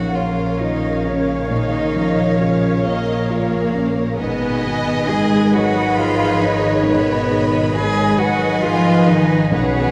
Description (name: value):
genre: cinematic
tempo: 45 BPM (dotted quarters)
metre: 6/8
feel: rubato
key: unclear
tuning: A4 = 439 Hz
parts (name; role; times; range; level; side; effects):
- dark studio violin section; melody; 0.0-9.9 s; Ab4 to Eb5; -31 LUFS; equal; none
- warm cello; melody; 0.0-9.9 s; Bb3 to Ab4; -26 LUFS; equal; none
- bright large flute ensemble; second line; 0.0-9.9 s; Bb4 to Ab5; -28 LUFS; equal; none
- warm studio violin section; second line; 0.0-9.9 s; Db5 to Cb6; -28 LUFS; equal; none
- felt-muted upright piano; accompaniment; 0.0-9.9 s; B1 to Db5; -26 LUFS; equal; none
- warm studio viola section; accompaniment; 0.0-9.9 s; Ab4 to Db5; -29 LUFS; equal; none
- dark French horn section; sustained chords; 0.0-9.9 s; Db3 to Eb4; -27 LUFS; equal; none
- rich studio cello section; bass; 0.0-9.9 s; Bb2 to Ab3; -24 LUFS; equal; none
- warm studio double bass section; bass; 0.0-9.9 s; Ab1 to B1; -28 LUFS; equal; none
room: wet concert hall reverb, RT60 2.1 s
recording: heard from further back in the room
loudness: -17 LUFS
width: mono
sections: 0.0-9.9 A section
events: none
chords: 0.0 Bbm; 4.2 Abm